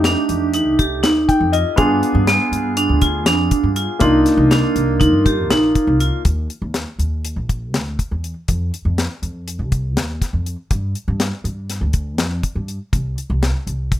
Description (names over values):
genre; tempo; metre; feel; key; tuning
progressive instrumental, band music in an uneven meter; 242 BPM (eighths); 9/8; straight; Eb major; A4 = 439 Hz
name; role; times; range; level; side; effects
clear concert grand piano; accompaniment; 0.0-6.2 s; A3 to G5; -20 LUFS; left 3 dB; none
upright bass; bass; 0.0-14.0 s; Bb1 to G2; -20 LUFS; equal; none
deep reggae drum kit; drums; 0.0-14.0 s; hi-hat, kick drum, snare drum; -20 LUFS; left 1 dB; none
vibraphone with hard mallets; arpeggios; 0.1-6.2 s; B3 to G4; -17 LUFS; right 2 dB; none
room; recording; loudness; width
light reverb; none; -16 LUFS; side -12 dB against mid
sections
0.0-6.2 A section; 6.2-14.0 B section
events
grand piano fill 1.0-1.8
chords
0.0 F13; 1.8 G7b9; 4.0 Cm11; 6.2 Eb5; 8.5 F5; 10.7 G5; 12.9 C5